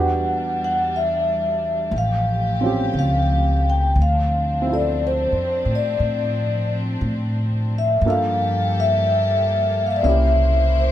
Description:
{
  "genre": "jazz ballad",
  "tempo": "59 BPM",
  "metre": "4/4",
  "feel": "swing 69% on 8ths",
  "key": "unclear",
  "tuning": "A4 = 441 Hz",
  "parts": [
    { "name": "vibraphone with soft mallets", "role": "melody", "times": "0.0-10.9 s", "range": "C5 to G5", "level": "-21 LUFS", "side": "left 1 dB", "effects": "none" },
    { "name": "warm baby grand piano", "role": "accompaniment", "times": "0.0-10.9 s", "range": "Bb3 to A4", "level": "-27 LUFS", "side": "right 3 dB", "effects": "none" },
    { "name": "warm studio string section", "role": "sustained chords", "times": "0.0-10.9 s", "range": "Db3 to C5", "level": "-30 LUFS", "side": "left 3 dB", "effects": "none" },
    { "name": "upright bass", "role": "bass", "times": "0.0-10.9 s", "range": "A1 to A2", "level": "-21 LUFS", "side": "equal", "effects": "none" }
  ],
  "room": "little or no reverb",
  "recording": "close, detailed microphones",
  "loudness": "-18 LUFS",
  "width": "side -12 dB against mid",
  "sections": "0.0-10.9 A section",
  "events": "none",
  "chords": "0.0 Em9; 1.9 A7alt; 4.0 Dm9; 8.0 Gm9; 10.0 C7b9",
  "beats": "0.90 1.92 2.94 | 3.96 4.99 6.01 7.02 | 8.03 9.04 10.05"
}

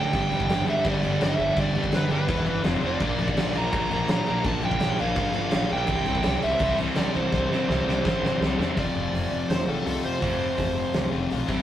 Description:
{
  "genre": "punk rock",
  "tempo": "167 BPM",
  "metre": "4/4",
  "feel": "straight",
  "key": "unclear",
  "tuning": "A4 = 440 Hz",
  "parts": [
    { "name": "smooth overdriven lead guitar", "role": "melody", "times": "0.0-11.1 s", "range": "A4 to Bb5", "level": "-28 LUFS", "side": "right 2 dB", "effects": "none" },
    { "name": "crunchy overdriven guitar", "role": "riff", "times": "0.0-11.6 s", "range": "E2 to D4", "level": "-29 LUFS", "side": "right 3 dB", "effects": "none" },
    { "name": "sludgy distorted guitar", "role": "riff", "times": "0.0-11.6 s", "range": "F2 to C5", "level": "-29 LUFS", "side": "left 4 dB", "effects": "overdrive" },
    { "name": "upright bass", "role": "bass", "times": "0.0-11.6 s", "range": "E1 to A2", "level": "-32 LUFS", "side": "equal", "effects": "none" },
    { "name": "big rock drum kit", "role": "drums", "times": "0.1-11.6 s", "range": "crash cymbal, hi-hat, kick drum, snare drum", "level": "-28 LUFS", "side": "equal", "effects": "none" }
  ],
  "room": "moderate stone room reverb, RT60 1.0 s",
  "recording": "rough rehearsal-room recording",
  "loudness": "-22 LUFS",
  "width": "side -11 dB against mid",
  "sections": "0.0-8.8 A section; 8.8-11.6 B section",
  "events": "drum fill 7.3-8.8; half time 8.8-11.6",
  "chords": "0.1 G; 2.3 E5; 2.7 F5; 3.0 Bb; 5.9 C; 8.8 F",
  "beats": "| 0.13 0.49 0.85 1.21 | 1.57 1.93 2.29 2.65 | 3.01 3.37 3.73 4.09 | 4.45 4.81 5.17 5.53 | 5.89 6.25 6.61 6.97 | 7.33 7.69 8.05 8.41 | 8.77 9.13 9.49 9.86 | 10.22 10.58 10.94 11.30"
}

